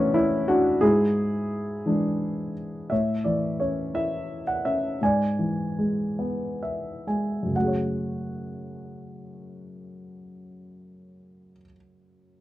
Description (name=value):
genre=classical, lyrical solo piano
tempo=41-60 BPM (dotted quarters)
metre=6/8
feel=rubato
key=F# minor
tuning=A4 = 440 Hz
part: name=dark grand piano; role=solo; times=0.0-12.4 s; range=F#2 to G#5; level=-24 LUFS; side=equal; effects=none
room=light reverb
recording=dark, warm production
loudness=-23 LUFS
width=side -15 dB against mid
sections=0.0-2.9 A section; 2.9-7.6 B section; 7.6-12.4 C section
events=slowing down 2.9-7.6; grand piano fill 6.2-7.6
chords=0.0 A; 0.8 E7/G#; 2.9 A; 5.0 E7/G#; 7.6 F#madd9